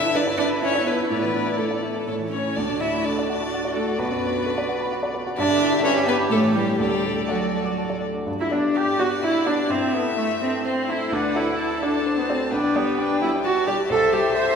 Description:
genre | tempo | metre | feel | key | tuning
quick classical-period movement for piano quintet | 121-133 BPM | 3/4 | rubato | D major, G major from 8.3 s | A4 = 440 Hz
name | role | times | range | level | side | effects
rich violin | melody | 0.0-14.6 s | F#4 to E5 | -28 LUFS | left 5 dB | none
warm violin | second line | 0.0-14.6 s | A3 to A5 | -30 LUFS | left 2 dB | none
rich viola | accompaniment | 0.0-14.6 s | A3 to C5 | -25 LUFS | right 1 dB | none
warm baby grand piano | accompaniment | 0.0-14.6 s | B1 to D6 | -27 LUFS | equal | none
warm cello | second line | 0.1-14.6 s | F#3 to C5 | -27 LUFS | right 3 dB | none
room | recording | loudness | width
wet church reverb, RT60 3.6 s | recorded in a church or concert hall | -20 LUFS | side -6 dB against mid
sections
0.0-8.3 A section; 8.3-14.6 B section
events
none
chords
0.0 Em7/G; 1.1 Asus4; 2.1 A; 2.6 D; 4.0 Bm; 5.4 Em7/G; 6.3 A7; 6.8 D; 8.3 G; 9.7 Am/G; 11.1 D; 12.5 G/B; 13.9 C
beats
0.15 0.63 | 1.10 1.58 2.08 | 2.56 3.05 3.53 | 3.99 4.46 4.92 | 5.38 5.84 6.31 | 6.80 7.29 7.78 | 8.27 8.75 9.23 | 9.70 10.18 10.66 | 11.12 11.59 12.05 | 12.52 12.98 13.44 | 13.89 14.35

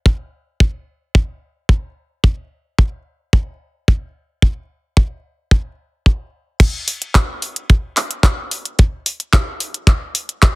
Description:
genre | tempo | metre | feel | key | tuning
nu-disco | 110 BPM | 4/4 | straight | none | none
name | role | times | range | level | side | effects
kick drum | drums | 0.1-10.5 s | none | -11 LUFS | equal | none
pop drum kit | drums | 6.6-10.5 s | crash cymbal, handclaps, hi-hat | -19 LUFS | equal | overdrive, low-pass filter on hats, low-pass filter on snare, low-pass filter on cymbals, low-pass filter on room
room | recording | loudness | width
little or no reverb | heavily compressed radio sound, multiband compression | -16 LUFS | side -24 dB against mid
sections
0.0-6.6 A section; 6.6-10.6 B section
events
drop 6.6-10.6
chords
none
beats
| 0.06 0.60 1.15 1.69 | 2.24 2.79 3.33 3.88 | 4.42 4.97 5.51 6.06 | 6.60 7.15 7.69 8.24 | 8.79 9.33 9.88 10.42

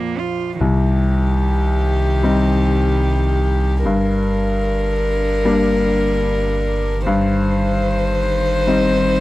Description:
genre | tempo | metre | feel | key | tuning
neoclassical piano and strings | 75 BPM | 4/4 | rubato | C minor | A4 = 440 Hz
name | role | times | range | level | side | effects
rich cello | second line | 0.0-9.2 s | D3 to F4 | -26 LUFS | right 7 dB | none
bright concert grand piano | accompaniment | 0.0-9.2 s | Bb1 to D5 | -20 LUFS | left 2 dB | none
warm violin | melody | 0.6-9.2 s | G4 to C5 | -21 LUFS | left 2 dB | none
warm sub bass | bass | 0.6-9.2 s | G1 to C2 | -20 LUFS | equal | none
room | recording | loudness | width
little or no reverb | dry, close 1970s-style studio recording | -15 LUFS | side -17 dB against mid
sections
0.6-9.2 A section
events
none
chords
0.0 Bb; 0.6 Cm; 3.8 Gm; 7.1 Cm/G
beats
| 0.60 1.42 2.23 3.04 | 3.85 4.65 5.45 6.25 | 7.06 7.86 8.66

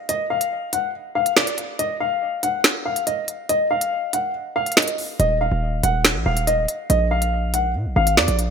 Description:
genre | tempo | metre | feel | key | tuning
hip hop, drill | 141 BPM | 4/4 | half-time | Eb harmonic minor | A4 = 438 Hz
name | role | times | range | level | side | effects
dark baby grand piano | melody | 0.1-8.3 s | D5 to Gb5 | -21 LUFS | left 1 dB | wide subtle chorus, digital delay
drill drum kit | drums | 0.1-8.5 s | finger snaps, hi-hat, snare drum | -19 LUFS | equal | none
hard-hitting 808-style bass | bass | 5.2-8.5 s | Eb1 to Bb2 | -21 LUFS | equal | none
room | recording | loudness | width
moderate plate reverb, RT60 1.4 s, digital ambience | bright 1980s-style digital production | -18 LUFS | side -6 dB against mid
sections
0.0-8.5 A section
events
break 0.0-5.2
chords
0.0 N.C.; 5.2 Eb5; 6.9 Bb5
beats
| 0.09 0.52 0.94 1.37 | 1.79 2.22 2.64 3.07 | 3.49 3.92 4.34 4.77 | 5.20 5.62 6.05 6.47 | 6.90 7.32 7.75 8.17

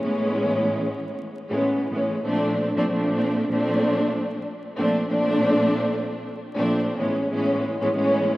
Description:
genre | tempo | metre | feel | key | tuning
hip hop | 95 BPM | 4/4 | swing 62% on 16ths | unclear | A4 = 440 Hz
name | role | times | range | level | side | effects
warm studio string section | solo | 0.0-8.4 s | A2 to D4 | -21 LUFS | equal | cassette tape, high-pass filter, low-pass filter
room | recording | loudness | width
light reverb, studio reverb | rough home demo mix, vinyl crackle | -21 LUFS | side -17 dB against mid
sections
0.0-2.2 A section; 2.2-8.4 B section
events
none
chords
0.0 Amaj9; 2.2 Bbmaj9; 7.0 Amaj9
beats
0.35 0.98 1.62 | 2.25 2.88 3.51 4.14 | 4.77 5.41 6.04 6.67 | 7.30 7.93

